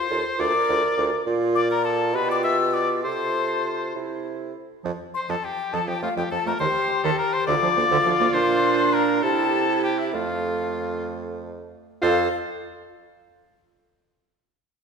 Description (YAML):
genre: quick classical-period movement for wind quintet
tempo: 63-70 BPM (dotted quarters)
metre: 6/8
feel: straight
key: F major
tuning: A4 = 442 Hz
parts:
  - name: mellow hollow silver concert flute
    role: melody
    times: 0.0-12.4 s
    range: E5 to E6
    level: -25 LUFS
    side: left 5 dB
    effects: none
  - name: bright oboe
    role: second line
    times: 0.0-12.3 s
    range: E4 to E5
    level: -28 LUFS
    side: left 3 dB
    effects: none
  - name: warm French horn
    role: accompaniment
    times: 0.0-12.3 s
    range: F4 to Bb4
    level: -28 LUFS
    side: right 1 dB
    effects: none
  - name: warm clarinet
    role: accompaniment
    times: 0.1-12.3 s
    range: D3 to A4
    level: -28 LUFS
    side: right 8 dB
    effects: none
  - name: warm bassoon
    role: bass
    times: 0.1-12.3 s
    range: D2 to C3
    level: -28 LUFS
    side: right 2 dB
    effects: none
room: wet scoring stage reverb, RT60 1.9 s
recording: minimal, uncompressed stereo recording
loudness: -20 LUFS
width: side -5 dB against mid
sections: 0.0-12.0 A section; 12.0-13.9 B section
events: none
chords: 0.4 Bb/D; 1.3 Bb5; 2.1 G7/B; 3.0 F/C; 4.0 C; 4.8 F; 6.6 Eb6; 7.5 Bb/D; 8.3 Bb; 9.2 C; 10.1 F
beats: 0.39 | 1.26 2.15 | 3.04 3.95 | 4.85 5.74 | 6.61 7.48 | 8.35 9.23 | 10.14 11.08 | 12.02